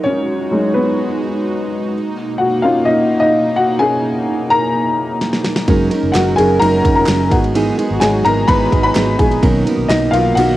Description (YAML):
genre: piano-driven pop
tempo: 128 BPM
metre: 4/4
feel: straight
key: unclear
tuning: A4 = 441 Hz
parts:
  - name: dark upright piano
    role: accompaniment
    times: 0.0-10.6 s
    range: D#3 to B5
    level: -15 LUFS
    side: left 2 dB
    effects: cassette tape
  - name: airy breathy pad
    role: sustained chords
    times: 0.0-10.6 s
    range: B2 to A#4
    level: -21 LUFS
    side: right 1 dB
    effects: chorus, cassette tape
  - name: pop drum kit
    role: drums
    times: 5.2-10.5 s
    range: kick drum, ride cymbal, snare drum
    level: -18 LUFS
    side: equal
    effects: cassette tape
  - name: fingerpicked plugged-in steel-string acoustic guitar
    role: riff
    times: 5.7-10.6 s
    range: G#2 to A#4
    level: -17 LUFS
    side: right 4 dB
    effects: cassette tape
  - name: vintage muted fingered electric bass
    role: bass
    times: 5.7-10.6 s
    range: F#1 to B1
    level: -20 LUFS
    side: equal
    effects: none
  - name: group handclap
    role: percussion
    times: 6.1-10.0 s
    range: none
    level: -28 LUFS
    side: right 4 dB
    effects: none
room: light reverb, studio reverb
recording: home recording on cassette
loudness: -12 LUFS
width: side -15 dB against mid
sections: 0.0-10.6 A section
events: upright piano solo 0.0-10.6; drum fill 5.2-5.7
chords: 0.0 B69/F#; 1.9 Bmaj7; 5.7 F#6; 7.3 Emaj7/G#; 9.4 Bmaj7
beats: | 0.06 0.52 0.99 1.46 | 1.93 2.40 2.87 3.33 | 3.80 4.27 4.74 5.21 | 5.68 6.14 6.61 7.08 | 7.55 8.02 8.49 8.96 | 9.42 9.89 10.36